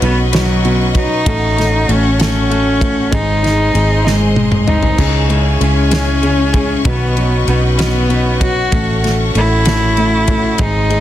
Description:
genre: six-eight pop ballad.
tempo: 64 BPM (dotted quarters).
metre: 6/8.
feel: straight.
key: unclear.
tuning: A4 = 440 Hz.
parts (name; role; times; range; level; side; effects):
warm cello; melody; 0.0-11.0 s; F#3 to F#4; -17 LUFS; left 1 dB; none.
dark upright piano; accompaniment; 0.0-11.0 s; B2 to D#4; -20 LUFS; left 1 dB; none.
bright symphonic string section; sustained chords; 0.0-11.0 s; G#4 to C#6; -23 LUFS; left 4 dB; none.
direct-recorded clean electric guitar; arpeggios; 0.0-11.0 s; G#2 to B4; -23 LUFS; right 6 dB; none.
vintage muted fingered electric bass; bass; 0.0-11.0 s; G#1 to C#2; -16 LUFS; equal; none.
loose indie drum kit; drums; 0.0-11.0 s; crash cymbal, kick drum, ride cymbal, snare drum, toms; -19 LUFS; equal; none.
room: small room ambience.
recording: dense, heavily limited modern master.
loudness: -11 LUFS.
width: side -12 dB against mid.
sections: 0.0-11.0 A section.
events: drum fill 4.1-5.0.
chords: 0.0 Badd9; 1.3 F#m/A; 3.1 G#; 5.0 C#m; 6.9 Badd9; 8.7 F#m/A.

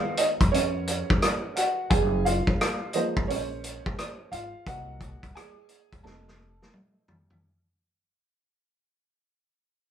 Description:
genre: hip hop, jazz-hop.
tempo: 87 BPM.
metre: 4/4.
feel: swing 65% on 16ths.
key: unclear.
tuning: A4 = 440 Hz.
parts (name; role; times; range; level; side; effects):
warm upright piano; accompaniment; 0.0-7.0 s; Eb3 to A5; -29 LUFS; right 2 dB; none.
vintage drum kit; drums; 0.2-7.4 s; hi-hat, kick drum, rim click, snare drum, toms; -26 LUFS; equal; none.
upright bass; bass; 0.4-6.6 s; F1 to F2; -31 LUFS; equal; none.
room: moderate studio reverb, RT60 0.6 s.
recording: band playing live in one room.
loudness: -23 LUFS.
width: side -9 dB against mid.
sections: 0.0-7.4 A section.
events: fade-out 0.0-7.4; upright piano solo 0.0-7.4; drum fill 6.0-7.4.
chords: 0.0 Db7; 1.9 Gbmaj9#11; 4.7 Cm7b5; 6.0 F7.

